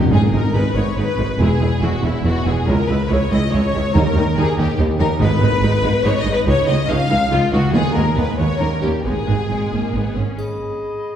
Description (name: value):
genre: cinematic, heroic adventure film score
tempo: 141 BPM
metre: 3/4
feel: straight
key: G# minor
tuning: A4 = 440 Hz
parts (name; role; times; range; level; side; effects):
- rich studio violin section; second line; 0.0-10.1 s; E4 to E#5; -22 LUFS; left 2 dB; none
- timpani; percussion; 0.0-0.7, 4.0-8.3 s; F#2 to D#3; -21 LUFS; equal; none
- clear symphonic violin section; melody; 0.1-10.1 s; E4 to E#5; -30 LUFS; left 4 dB; none
- rich symphonic viola section; accompaniment; 0.1-10.4 s; G3 to E4; -24 LUFS; equal; none
- rich symphonic cello section; bass; 0.1-10.3 s; C#2 to G#2; -21 LUFS; right 1 dB; none
- rich symphonic double bass section; bass; 0.1-10.2 s; E1 to D#2; -21 LUFS; right 2 dB; none
- bright oboe; second line; 10.4-11.2 s; D#5; -38 LUFS; left 2 dB; none
- mellow clarinet; second line; 10.4-11.2 s; G#4; -25 LUFS; left 1 dB; none
- mellow silver concert flute; second line; 10.4-11.2 s; B5; -38 LUFS; left 3 dB; none
- triangle; percussion; 10.4-11.2 s; none; -50 LUFS; left 2 dB; none
room: wet scoring stage reverb, RT60 1.9 s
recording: heard from further back in the room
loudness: -15 LUFS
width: side -9 dB against mid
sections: 0.1-10.4 A section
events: none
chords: 0.1 G#m; 1.4 E; 2.7 C#m; 3.9 D#; 5.2 G#m; 6.5 C#add9; 7.7 G#m/D#; 8.6 D#7; 9.0 G#m